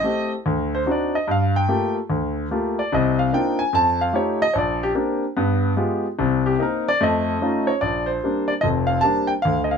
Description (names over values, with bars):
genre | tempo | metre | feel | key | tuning
solo jazz | 147 BPM | 4/4 | swing 65% on 8ths | Bb major | A4 = 440 Hz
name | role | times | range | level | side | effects
clear grand piano | solo | 0.0-9.8 s | F1 to A5 | -19 LUFS | left 1 dB | none
room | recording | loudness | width
light reverb | close, detailed microphones | -19 LUFS | side -6 dB against mid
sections
0.0-7.8 A section; 7.8-9.8 B section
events
grand piano solo 0.0-7.8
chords
0.5 D7b9; 1.3 Gm9; 2.9 Cm11; 3.7 F9; 4.5 Bb69; 5.4 G7b9; 6.2 Cm7; 7.0 Faug7; 7.8 Bb69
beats
0.05 0.46 0.87 | 1.28 1.69 2.10 2.51 | 2.92 3.33 3.73 4.14 | 4.55 4.96 5.37 5.77 | 6.18 6.59 7.00 7.41 | 7.81 8.22 8.63 9.04 | 9.45